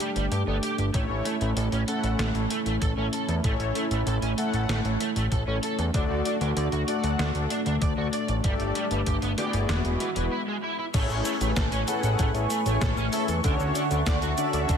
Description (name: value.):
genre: synthwave.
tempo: 96 BPM.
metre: 4/4.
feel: straight.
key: A major.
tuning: A4 = 440 Hz.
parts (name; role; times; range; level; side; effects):
chorused pulse-width pad; sustained chords; 0.0-14.8 s; D3 to C#6; -30 LUFS; equal; sidechain pumping.
crunchy overdriven guitar; riff; 0.0-14.8 s; E3 to D5; -33 LUFS; right 2 dB; ensemble chorus, tape echo.
detuned 8-bit digital drum machine; drums; 0.0-14.8 s; crash cymbal, hi-hat, shaker, snare drum; -34 LUFS; left 1 dB; overdrive.
fat analog bass; bass; 0.2-14.8 s; E1 to G2; -27 LUFS; equal; none.
mellow synth brass; stabs; 0.5-14.8 s; A3 to F#5; -31 LUFS; left 3 dB; chorus, tape echo.
electronic kick drum; drums; 0.9-14.8 s; none; -28 LUFS; equal; overdrive.
room: moderate scoring stage reverb, RT60 1.9 s.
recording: dense, heavily limited modern master.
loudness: -24 LUFS.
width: side -7 dB against mid.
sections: 0.0-10.9 A section; 10.9-14.8 B section.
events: break 10.3-10.9.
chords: 0.0 Gsus2; 0.9 A; 5.9 D; 8.4 Gsus2; 9.7 Eadd9; 10.9 Amaj7; 13.4 Dmaj7.